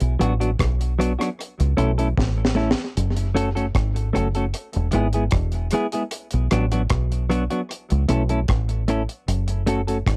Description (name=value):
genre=roots reggae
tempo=76 BPM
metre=4/4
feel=straight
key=unclear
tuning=A4 = 440 Hz
part: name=deep dub fingered electric bass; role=bass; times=0.0-10.2 s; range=E1 to C#2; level=-24 LUFS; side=equal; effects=none
part: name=deep reggae drum kit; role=drums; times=0.0-10.2 s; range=hi-hat, kick drum, rim click, snare drum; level=-27 LUFS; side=equal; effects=cassette tape, tape echo
part: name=clean electric guitar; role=accompaniment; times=0.2-10.0 s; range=F#3 to A4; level=-26 LUFS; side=equal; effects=cassette tape, tape echo
room=light reverb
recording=home recording on cassette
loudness=-22 LUFS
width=mono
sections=0.0-10.2 A section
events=drum fill 2.2-3.0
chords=0.0 Bm; 1.4 A; 3.0 F#m; 4.5 E; 6.1 Bm; 7.7 A; 9.3 F#m